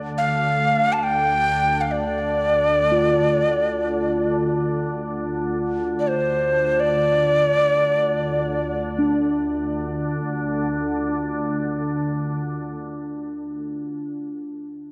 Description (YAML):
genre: world meditative, free-time meditation music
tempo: free time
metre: none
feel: none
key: D minor pentatonic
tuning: A4 = 439 Hz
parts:
  - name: organ-like drone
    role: drone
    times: 0.0-13.7 s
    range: D2 to D3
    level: -29 LUFS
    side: equal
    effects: ensemble chorus, built-in reverb
  - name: breathy Native American-style cedar flute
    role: melody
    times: 0.2-8.8 s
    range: C5 to A5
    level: -22 LUFS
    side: equal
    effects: diffuse ambient delay
  - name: quartz singing bowl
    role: texture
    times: 2.9-13.6 s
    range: D4 to F4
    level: -29 LUFS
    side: equal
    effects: none
room: wet recital hall reverb, RT60 1.7 s, small room ambience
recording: worn, warbling old tape, cassette tape, warbly pitch drift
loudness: -22 LUFS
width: mono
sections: 0.0-9.0 A section; 9.0-13.1 B section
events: none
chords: none